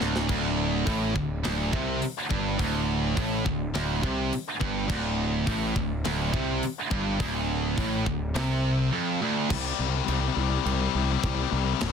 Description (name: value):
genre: heavy metal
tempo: 104 BPM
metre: 4/4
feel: straight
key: unclear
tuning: A4 = 440 Hz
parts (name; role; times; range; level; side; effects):
- heavy high-gain guitar; riff; 0.0-11.9 s; D2 to G3; -30 LUFS; left 14 dB; distortion
- high-gain distorted guitar; riff; 0.0-9.5 s; D2 to C3; -28 LUFS; right 11 dB; distortion
- fuzz picked electric bass; bass; 0.0-11.9 s; D1 to C2; -30 LUFS; equal; overdrive
- tight metal drum kit; drums; 0.0-11.9 s; china cymbal, crash cymbal, hi-hat, kick drum, snare drum; -33 LUFS; equal; soft clipping on kick
room: little or no reverb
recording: dense, heavily limited modern master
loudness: -24 LUFS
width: side -6 dB against mid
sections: 0.0-9.5 A section; 9.5-11.9 B section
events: drum fill 0.0; half time 9.5-11.9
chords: 0.0 D5; 9.5 C5